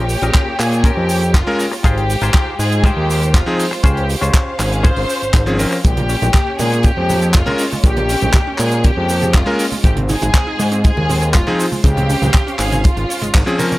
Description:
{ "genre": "nu-disco, nu disco", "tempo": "120 BPM", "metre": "4/4", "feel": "straight", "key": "Bb dorian", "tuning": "A4 = 441 Hz", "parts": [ { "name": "warm studio violin section", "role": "melody", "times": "0.0-13.6 s", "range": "F4 to C5", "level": "-22 LUFS", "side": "left 1 dB", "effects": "analog delay" }, { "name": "muted studio string section", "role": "sustained chords", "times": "0.0-13.8 s", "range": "Ab3 to G5", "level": "-28 LUFS", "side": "right 1 dB", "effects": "sidechain pumping" }, { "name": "direct-recorded clean electric guitar", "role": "riff", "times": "0.0-5.8 s", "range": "Db4 to C5", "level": "-24 LUFS", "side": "left 3 dB", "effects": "lush chorus, low-pass filter" }, { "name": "fat analog bass", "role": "bass", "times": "0.0-13.4 s", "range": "Eb1 to Bb2", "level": "-17 LUFS", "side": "equal", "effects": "none" }, { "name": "tight funk drum kit", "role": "drums", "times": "0.1-13.8 s", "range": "handclaps, hi-hat, shaker", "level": "-22 LUFS", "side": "right 1 dB", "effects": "none" }, { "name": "kick drum", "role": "drums", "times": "0.3-13.4 s", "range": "none", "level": "-13 LUFS", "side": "equal", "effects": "none" }, { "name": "bright electric grand piano", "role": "accompaniment", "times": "1.5-13.8 s", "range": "F3 to Bb4", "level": "-19 LUFS", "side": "left 1 dB", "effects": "sidechain pumping" }, { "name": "wide unison pluck", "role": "arpeggios", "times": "5.8-13.8 s", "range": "Ab3 to Db5", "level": "-26 LUFS", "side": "right 2 dB", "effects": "sidechain pumping, analog delay" }, { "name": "congas", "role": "percussion", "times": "6.0-13.8 s", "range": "none", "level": "-24 LUFS", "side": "right 2 dB", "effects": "none" } ], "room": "studio reverb", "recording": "dry, gritty hardware recording", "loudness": "-13 LUFS", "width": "side -18 dB against mid", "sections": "0.0-13.8 A section", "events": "band accent 13.3", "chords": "0.0 Bbm7; 1.8 Ab6; 3.8 Dbmaj7; 5.8 Bbm7; 9.8 Ab6; 11.8 Dbmaj7" }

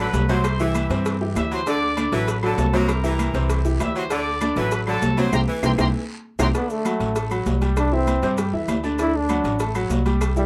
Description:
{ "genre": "latin, salsa", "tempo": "197 BPM", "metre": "4/4", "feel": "straight", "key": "D major", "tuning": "A4 = 439 Hz", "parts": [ { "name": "bright trumpet section", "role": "melody", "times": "0.0-6.5 s", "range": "A4 to E6", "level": "-29 LUFS", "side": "equal", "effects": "none" }, { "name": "bright saxophone section", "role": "second line", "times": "0.0-6.5 s", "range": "D3 to F#3", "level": "-30 LUFS", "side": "equal", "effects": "none" }, { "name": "clear concert grand piano", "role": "accompaniment", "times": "0.0-10.5 s", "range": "C3 to A5", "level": "-28 LUFS", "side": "equal", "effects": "none" }, { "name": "upright bass", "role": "bass", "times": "0.0-10.5 s", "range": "A1 to G2", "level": "-26 LUFS", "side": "equal", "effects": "none" }, { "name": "congas", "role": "percussion", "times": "0.1-10.5 s", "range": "none", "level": "-31 LUFS", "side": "equal", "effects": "none" }, { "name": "cowbell", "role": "percussion", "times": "0.1-10.4 s", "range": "none", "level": "-35 LUFS", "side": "equal", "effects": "none" }, { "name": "guiro", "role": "percussion", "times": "0.1-10.5 s", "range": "none", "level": "-45 LUFS", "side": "equal", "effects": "none" }, { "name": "maracas", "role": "percussion", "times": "0.1-10.5 s", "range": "none", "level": "-43 LUFS", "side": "equal", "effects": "none" }, { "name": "timbales and agogo bells", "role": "percussion", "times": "0.1-10.4 s", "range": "none", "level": "-35 LUFS", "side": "equal", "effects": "none" }, { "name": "claves", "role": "percussion", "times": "0.4-10.4 s", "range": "none", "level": "-40 LUFS", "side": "equal", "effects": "none" }, { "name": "bright trombone", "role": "melody", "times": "6.6-10.5 s", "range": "G3 to E4", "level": "-25 LUFS", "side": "equal", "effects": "none" } ], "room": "little or no reverb", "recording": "close, detailed microphones", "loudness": "-22 LUFS", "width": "mono", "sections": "0.0-6.5 A section; 6.5-10.5 B section", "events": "drum fill 5.3-6.5; band accent 5.3-6.5; trombone solo 6.5-10.5", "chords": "0.4 C; 1.7 D6; 2.9 C7; 4.1 D6; 5.3 C7; 6.5 D; 7.8 C; 9.0 D" }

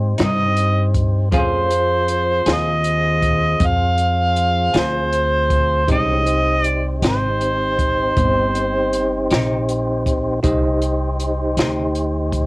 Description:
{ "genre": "slow blues", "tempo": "53 BPM (dotted quarters)", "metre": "12/8", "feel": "straight", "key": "C minor", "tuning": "A4 = 443 Hz", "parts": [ { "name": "barky tine electric piano", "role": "accompaniment", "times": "0.0-12.5 s", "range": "Eb4 to F5", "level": "-28 LUFS", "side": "right 2 dB", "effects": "medium stereo tremolo, cassette tape" }, { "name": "tonewheel organ", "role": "sustained chords", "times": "0.0-12.5 s", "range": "E3 to C5", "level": "-24 LUFS", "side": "equal", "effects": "slow rotary speaker, overdrive, cassette tape" }, { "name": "upright bass", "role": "bass", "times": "0.0-12.5 s", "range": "G1 to Ab2", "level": "-21 LUFS", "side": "equal", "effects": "none" }, { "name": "mellow harmonica", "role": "melody", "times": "0.2-9.3 s", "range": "C5 to F5", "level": "-18 LUFS", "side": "right 1 dB", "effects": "overdrive, cassette tape" }, { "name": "clean electric guitar", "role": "accompaniment", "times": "0.2-11.8 s", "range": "C3 to Ab4", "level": "-25 LUFS", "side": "left 2 dB", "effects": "tremolo, cassette tape" }, { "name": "compact cocktail drum kit", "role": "drums", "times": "0.2-12.5 s", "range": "hi-hat, kick drum, snare drum", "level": "-22 LUFS", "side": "equal", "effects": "cassette tape" } ], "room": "little or no reverb", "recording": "home recording on cassette", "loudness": "-15 LUFS", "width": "side -23 dB against mid", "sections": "0.0-12.5 A section", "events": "none", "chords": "0.0 Cm; 1.3 Fm; 5.9 Cm" }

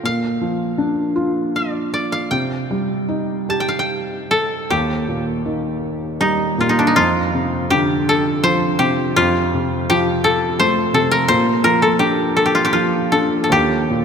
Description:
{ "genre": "celtic folk, Celtic slow air", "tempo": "71-87 BPM", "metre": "3/4", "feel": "rubato", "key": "unclear", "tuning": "A4 = 440 Hz", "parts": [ { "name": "koto", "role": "melody", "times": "0.0-14.0 s", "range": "D4 to A5", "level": "-17 LUFS", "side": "left 1 dB", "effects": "none" }, { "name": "felt-muted upright piano", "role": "accompaniment", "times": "0.0-14.0 s", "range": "Eb2 to G4", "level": "-19 LUFS", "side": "equal", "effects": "none" } ], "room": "wet cathedral reverb, RT60 4.9 s", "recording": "minimal, uncompressed stereo recording", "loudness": "-15 LUFS", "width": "side -6 dB against mid", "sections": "0.0-4.7 A section; 4.7-14.0 B section", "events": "none", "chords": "0.0 Bb; 2.3 Cm; 4.7 Eb; 7.0 Dm7/F; 9.2 F; 11.3 Bb; 13.5 Eb" }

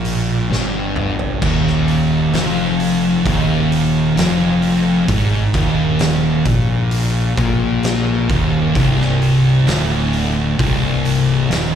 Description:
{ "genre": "stoner and doom metal", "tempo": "65 BPM", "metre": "4/4", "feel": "straight", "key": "unclear", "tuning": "A4 = 440 Hz", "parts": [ { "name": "thick fuzz guitar", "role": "riff", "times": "0.0-11.8 s", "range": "C2 to Bb2", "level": "-18 LUFS", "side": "left 7 dB", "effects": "distortion" }, { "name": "thick fuzz guitar", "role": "riff", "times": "0.0-11.8 s", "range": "C2 to Bb2", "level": "-19 LUFS", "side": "right 9 dB", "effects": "distortion" }, { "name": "fuzz fingered electric bass", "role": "bass", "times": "0.0-11.8 s", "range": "C1 to Bb1", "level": "-22 LUFS", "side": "equal", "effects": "overdrive" }, { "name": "oversized low-tuned drum kit", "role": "drums", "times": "0.0-11.7 s", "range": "crash cymbal, hi-hat, kick drum, snare drum, toms", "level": "-22 LUFS", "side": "equal", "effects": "none" } ], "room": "light reverb", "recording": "live gig heard through the venue's PA, club reverb", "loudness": "-14 LUFS", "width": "side -8 dB against mid", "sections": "0.0-11.8 A section", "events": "drum fill 0.5-1.4", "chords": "0.0 N.C.; 1.4 Eb5; 8.8 Cm" }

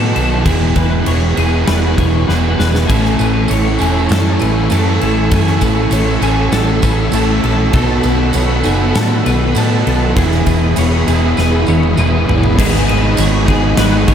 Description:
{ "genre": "rock, shoegaze and dream pop", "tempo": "99 BPM", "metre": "4/4", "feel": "straight", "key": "A lydian", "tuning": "A4 = 440 Hz", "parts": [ { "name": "twelve-string electric guitar", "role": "arpeggios", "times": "0.0-14.1 s", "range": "G#4 to G#5", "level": "-23 LUFS", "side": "left 7 dB", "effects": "ensemble chorus, diffuse ambient delay" }, { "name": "overdriven semi-hollow guitar", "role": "riff", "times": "0.0-14.1 s", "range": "G#2 to A4", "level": "-17 LUFS", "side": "right 10 dB", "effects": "reverse reverb" }, { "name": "thick fuzz guitar", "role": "riff", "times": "0.0-14.1 s", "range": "E2 to B3", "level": "-19 LUFS", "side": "left 8 dB", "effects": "distortion, lush chorus" }, { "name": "hollow-body short-scale fingered electric bass", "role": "bass", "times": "0.0-14.1 s", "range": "E1 to A2", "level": "-16 LUFS", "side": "equal", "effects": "none" }, { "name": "huge arena drum kit", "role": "drums", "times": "0.2-14.1 s", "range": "crash cymbal, kick drum, snare drum, toms", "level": "-18 LUFS", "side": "equal", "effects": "none" }, { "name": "string machine, cellos", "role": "sustained chords", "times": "2.9-14.1 s", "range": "G#4 to E6", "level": "-22 LUFS", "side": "equal", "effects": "ensemble chorus" }, { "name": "tambourine", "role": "percussion", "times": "2.9-13.3 s", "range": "none", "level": "-31 LUFS", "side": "right 8 dB", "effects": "none" } ], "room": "moderate plate reverb, RT60 1.9 s, small room ambience", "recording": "dreamy mix soaked in reverb", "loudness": "-11 LUFS", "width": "side -8 dB against mid", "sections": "0.0-12.6 A section; 12.6-14.1 B section", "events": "drum fill 2.3-2.9, 11.4-12.6", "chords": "0.5 E; 2.9 Amaj7; 7.7 B7sus4; 10.2 Emaj7; 12.6 G#m" }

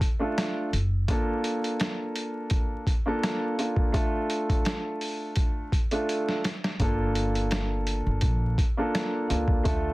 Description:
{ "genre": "hip hop, boom-bap hip-hop", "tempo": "84 BPM", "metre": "4/4", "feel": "swing 54% on 16ths", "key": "G minor", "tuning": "A4 = 440 Hz", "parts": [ { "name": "dark baby grand piano", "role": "accompaniment", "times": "0.0-9.9 s", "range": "A3 to A4", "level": "-28 LUFS", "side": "equal", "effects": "high-pass filter, low-pass filter" }, { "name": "boom bap sampler-style drum kit", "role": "drums", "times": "0.0-9.8 s", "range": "hi-hat, kick drum, rim click, snare drum", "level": "-27 LUFS", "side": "equal", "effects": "none" }, { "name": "upright bass", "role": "bass", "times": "0.7-1.0, 6.8-9.9 s", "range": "F#1 to D2", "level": "-27 LUFS", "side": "equal", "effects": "none" } ], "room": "little or no reverb", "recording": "dense, heavily limited modern master, vinyl crackle", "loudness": "-24 LUFS", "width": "side -20 dB against mid", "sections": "0.0-9.9 A section", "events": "drum fill 6.1-6.8", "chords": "0.0 Dm; 1.1 Bbmaj7; 3.9 Dm; 6.8 Gm7" }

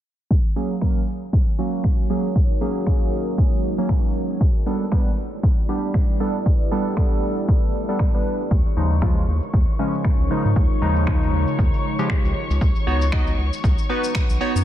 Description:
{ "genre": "deep house", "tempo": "117 BPM", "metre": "4/4", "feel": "swing 57% on 16ths", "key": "G# dorian", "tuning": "A4 = 441 Hz", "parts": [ { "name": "deep dark ambient pad", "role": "sustained chords", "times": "1.3-14.6 s", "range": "G#3 to D#5", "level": "-30 LUFS", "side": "left 1 dB", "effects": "chorus, built-in reverb, sidechain pumping" }, { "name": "electronic kick drum", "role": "drums", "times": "0.3-14.3 s", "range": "none", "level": "-19 LUFS", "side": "equal", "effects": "overdrive" }, { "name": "warm analog keys", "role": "stabs", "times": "0.6-14.6 s", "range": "C#3 to D#5", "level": "-24 LUFS", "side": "right 1 dB", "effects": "chorus, sidechain pumping, low-pass filter, tape echo" }, { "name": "electronic finger snaps", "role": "drums", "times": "0.8-14.3 s", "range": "none", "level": "-35 LUFS", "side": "equal", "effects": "overdrive, soft clipping on snare" }, { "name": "round analog bass", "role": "bass", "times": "8.5-14.6 s", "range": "B1 to G#2", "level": "-21 LUFS", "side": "equal", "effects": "sidechain pumping" }, { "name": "cabasa", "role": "percussion", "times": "8.5-14.6 s", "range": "none", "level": "-37 LUFS", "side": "left 6 dB", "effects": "none" }, { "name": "warm studio violin section", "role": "texture", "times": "8.5-14.6 s", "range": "C#5 to C#6", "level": "-33 LUFS", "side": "left 2 dB", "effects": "sidechain pumping" } ], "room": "digital ambience", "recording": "dense, heavily limited modern master, low-pass filter", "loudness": "-18 LUFS", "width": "side -12 dB against mid", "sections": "0.3-14.6 A section", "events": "filter sweep on synth keys 0.3-14.6; filter sweep 0.3-14.6", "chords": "0.3 G#9sus4; 4.4 A9sus4; 8.5 D#9sus4; 12.4 C#9sus4" }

